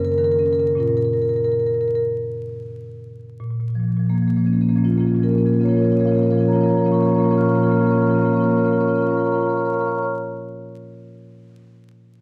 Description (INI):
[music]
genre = classical, contemporary piece for solo marimba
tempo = 46 BPM (dotted quarters)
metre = 6/8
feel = rubato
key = Bb minor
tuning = A4 = 440 Hz
[part]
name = marimba with medium mallets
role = solo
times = 0.0-10.1 s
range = Gb2 to F6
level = -20 LUFS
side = equal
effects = none
[sound]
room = moderate recital hall reverb, RT60 1.4 s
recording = vinyl crackle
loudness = -19 LUFS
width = mono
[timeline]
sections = 0.0-3.4 A section; 3.4-8.6 B section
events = slowing down 0.0-3.4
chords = 0.0 Gb; 0.8 Bbm